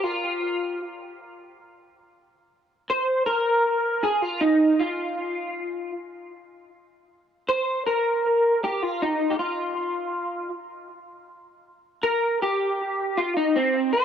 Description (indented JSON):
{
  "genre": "indie pop",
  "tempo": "79 BPM",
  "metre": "4/4",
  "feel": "straight",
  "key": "F minor",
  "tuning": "A4 = 440 Hz",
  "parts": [
    { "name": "electric guitar through a small old amp", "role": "solo", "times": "0.0-14.0 s", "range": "C4 to C5", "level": "-22 LUFS", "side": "equal", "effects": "ensemble chorus, warbly pitch drift, dub echo" }
  ],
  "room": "light reverb",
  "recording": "echo-heavy mix",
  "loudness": "-22 LUFS",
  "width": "side -8 dB against mid",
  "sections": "0.0-14.0 A section",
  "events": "clean electric guitar solo 0.0-14.0",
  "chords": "none"
}